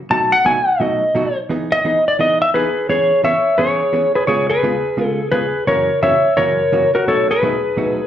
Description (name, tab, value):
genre	country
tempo	172 BPM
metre	4/4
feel	swing 65% on 8ths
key	E major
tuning	A4 = 442 Hz
part	clean lap steel guitar	melody	0.1-8.1 s	F#4 to A5	-14 LUFS	left 1 dB	slapback echo
part	hollow-body jazz guitar	accompaniment	0.1-8.0 s	F#2 to G#4	-22 LUFS	right 2 dB	slapback echo
room	moderate club reverb, RT60 0.6 s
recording	live gig heard through the venue's PA, club reverb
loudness	-14 LUFS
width	side -10 dB against mid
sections	0.0-2.9 A section; 2.9-8.1 B section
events	electric slide guitar solo 0.0-2.9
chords	0.1 B7; 1.5 Emaj7; 2.9 E6; 4.3 C#7; 5.7 F#7; 7.1 B7